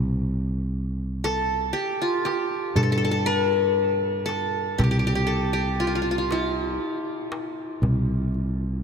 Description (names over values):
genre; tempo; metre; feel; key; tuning
Arabic maqam ensemble; 119 BPM (eighths); 10/8; straight; C maqam rast; A4 = 440 Hz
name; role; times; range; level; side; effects
sustaining fretless electric bass; bass; 0.0-8.8 s; C2 to G2; -26 LUFS; equal; none
qanun; melody; 1.2-8.8 s; E4-50c to Bb4+50c; -24 LUFS; left 1 dB; none
darbuka; percussion; 1.2-8.5 s; none; -28 LUFS; equal; none
room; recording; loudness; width
wet cathedral reverb, RT60 6.2 s; in a vast, echoing space; -22 LUFS; side -6 dB against mid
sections
0.0-8.8 A section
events
none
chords
none